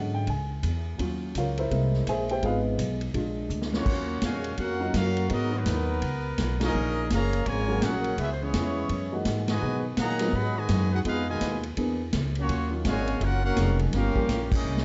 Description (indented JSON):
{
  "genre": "jazz, big band swing",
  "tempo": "167 BPM",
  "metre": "4/4",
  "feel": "swing 63% on 8ths",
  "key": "Eb minor",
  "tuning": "A4 = 442 Hz",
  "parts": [
    { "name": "dark upright piano", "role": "accompaniment", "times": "0.0-14.3 s", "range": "D3 to G#5", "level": "-34 LUFS", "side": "equal", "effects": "none" },
    { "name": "upright bass", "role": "bass", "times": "0.0-14.8 s", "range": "F1 to B2", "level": "-31 LUFS", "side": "equal", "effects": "none" },
    { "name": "swinging big-band drum kit", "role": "drums", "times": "0.3-14.8 s", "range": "crash cymbal, hi-hat, kick drum, ride cymbal, snare drum", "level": "-35 LUFS", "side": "equal", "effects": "none" },
    { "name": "clear trumpet section", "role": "melody", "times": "3.7-14.8 s", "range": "Gb3 to B5", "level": "-35 LUFS", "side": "equal", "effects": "none" },
    { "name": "clear trombone section", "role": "second line", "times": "3.7-14.8 s", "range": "Ab2 to Gb4", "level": "-34 LUFS", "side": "equal", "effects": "none" }
  ],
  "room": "moderate large studio reverb, RT60 1.3 s",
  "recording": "nothing above 7.8 kHz",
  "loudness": "-27 LUFS",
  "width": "mono",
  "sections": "0.0-3.9 A section; 3.9-14.8 B section",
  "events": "upright piano solo 0.0-3.9; drum fill 3.5-3.9, 14.6; band accent 6.6, 9.4, 14.5",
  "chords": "0.0 E13; 1.0 Ebm9; 1.7 C7b13; 2.4 Fm7b5; 3.1 Bb7; 3.9 Ebm9; 5.3 Abm9; 6.0 Db7; 6.7 Gbmaj9; 8.2 Dbm7; 8.9 Gb13; 9.6 B6; 11.1 Fm7b5; 11.8 E7#11; 12.5 Ebm9; 13.9 Gm7b5"
}